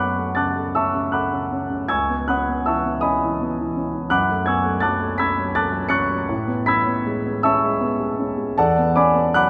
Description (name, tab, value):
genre	classical, impressionist solo piano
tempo	54 BPM (dotted quarters)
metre	6/8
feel	uneven beats, rubato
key	F# minor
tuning	A4 = 440 Hz
part	warm concert grand piano	solo	0.0-9.5 s	C#2 to C#7	-21 LUFS	equal	none
room	wet church reverb, RT60 3.2 s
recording	recorded in a church or concert hall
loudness	-21 LUFS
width	mono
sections	0.0-9.5 A section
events	none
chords	0.0 F#m; 1.9 C#m9; 4.1 F#madd9; 6.3 Amaj9; 8.6 E9sus4